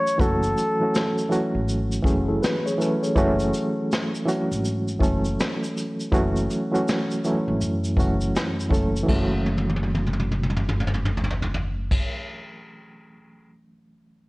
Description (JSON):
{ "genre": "lo-fi hip hop", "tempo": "81 BPM", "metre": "4/4", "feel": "swing 64% on 16ths", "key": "F# minor", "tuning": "A4 = 440 Hz", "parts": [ { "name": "breathy flugelhorn", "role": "melody", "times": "0.0-1.7 s", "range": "A4 to C#5", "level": "-24 LUFS", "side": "left 1 dB", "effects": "low-pass filter, slapback echo" }, { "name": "bright reed electric piano", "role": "accompaniment", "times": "0.0-14.3 s", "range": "E3 to A4", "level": "-24 LUFS", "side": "right 1 dB", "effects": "fast tremolo, low-pass filter" }, { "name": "vintage brush drum kit", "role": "drums", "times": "0.1-13.5 s", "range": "crash cymbal, hi-hat, kick drum, shaker, snare drum, toms", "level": "-26 LUFS", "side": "equal", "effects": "none" }, { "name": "upright bass", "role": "bass", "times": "0.2-12.0 s", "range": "F#1 to F#2", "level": "-27 LUFS", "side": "equal", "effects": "none" }, { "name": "mellow tine electric piano", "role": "second line", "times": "2.0-4.1 s", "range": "C#4 to C#5", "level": "-28 LUFS", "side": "left 1 dB", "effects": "fast stereo tremolo, low-pass filter, slapback echo" } ], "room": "light reverb", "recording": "worn, warbling old tape, cassette tape, warbly pitch drift", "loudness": "-21 LUFS", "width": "side -23 dB against mid", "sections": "0.0-9.1 A section; 9.1-12.0 B section", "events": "drum fill 9.5-11.9", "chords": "0.0 F#m7" }